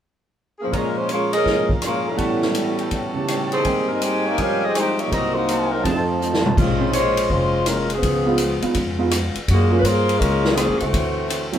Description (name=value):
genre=jazz, big band swing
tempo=164 BPM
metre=4/4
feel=swing 65% on 8ths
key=Bb minor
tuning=A4 = 441 Hz
part: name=clear saxophone section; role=melody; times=0.6-11.5 s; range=Db3 to F5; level=-21 LUFS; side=left 1 dB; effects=none
part: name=picked steel-string acoustic guitar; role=accompaniment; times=0.7-11.5 s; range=F2 to Ab4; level=-31 LUFS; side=left 2 dB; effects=none
part: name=warm concert grand piano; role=accompaniment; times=0.7-11.6 s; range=C2 to F#5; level=-24 LUFS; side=right 4 dB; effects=none
part: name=warm trumpet section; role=stabs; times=0.7-6.6 s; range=F4 to Bb5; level=-28 LUFS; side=right 2 dB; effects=none
part: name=swinging big-band drum kit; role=drums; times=0.7-11.6 s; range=crash cymbal, hi-hat, kick drum, ride cymbal, rim click, snare drum, toms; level=-25 LUFS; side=equal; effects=none
part: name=upright bass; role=bass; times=6.6-11.6 s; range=F1 to G2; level=-23 LUFS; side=equal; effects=none
room=wet studio reverb, RT60 0.5 s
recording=band playing live in one room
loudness=-18 LUFS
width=side -10 dB against mid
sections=0.7-6.6 A section; 6.6-11.6 B section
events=drum fill 6.2-6.6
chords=0.0 N.C.; 0.7 Bbm7; 2.2 A13; 3.7 Abmaj7; 5.1 Cm7b5; 5.8 F7; 6.6 Bbm11; 8.0 Db7; 9.5 Gbmaj9; 10.9 D9